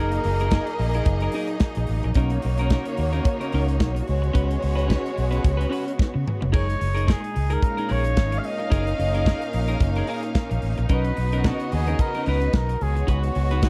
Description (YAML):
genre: disco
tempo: 110 BPM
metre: 4/4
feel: swing 56% on 16ths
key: F# major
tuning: A4 = 440 Hz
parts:
  - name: breathy flugelhorn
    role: melody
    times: 0.0-1.4, 6.6-13.7 s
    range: F#4 to E#5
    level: -31 LUFS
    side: equal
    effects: slapback echo
  - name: warm studio violin section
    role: second line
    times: 0.0-13.7 s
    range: G#3 to E#5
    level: -33 LUFS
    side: equal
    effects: none
  - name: clean electric guitar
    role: accompaniment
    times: 0.0-13.7 s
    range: C#4 to B4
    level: -33 LUFS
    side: equal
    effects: subtle chorus
  - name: clear studio string section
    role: sustained chords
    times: 0.0-13.7 s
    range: A#2 to F#4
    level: -35 LUFS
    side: equal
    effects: none
  - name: fingered electric bass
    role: bass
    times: 0.0-13.7 s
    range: E#1 to C#3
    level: -26 LUFS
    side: equal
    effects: none
  - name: modern studio drum kit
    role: drums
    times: 0.1-13.7 s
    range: crash cymbal, hi-hat, kick drum, snare drum, toms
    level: -24 LUFS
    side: equal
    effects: none
room: little or no reverb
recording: dry, close 1970s-style studio recording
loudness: -23 LUFS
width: mono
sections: 0.0-13.7 A section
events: drum fill 6.0-6.5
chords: 0.0 F#69; 2.2 Bmaj9; 4.1 C#7sus4; 6.5 F#69; 10.9 Bmaj9; 12.8 C#9sus4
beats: 0.52 1.06 1.61 | 2.16 2.71 3.25 3.80 | 4.34 4.89 5.44 5.98 | 6.53 7.08 7.62 8.17 | 8.71 9.26 9.81 10.35 | 10.90 11.45 11.99 12.54 | 13.08 13.63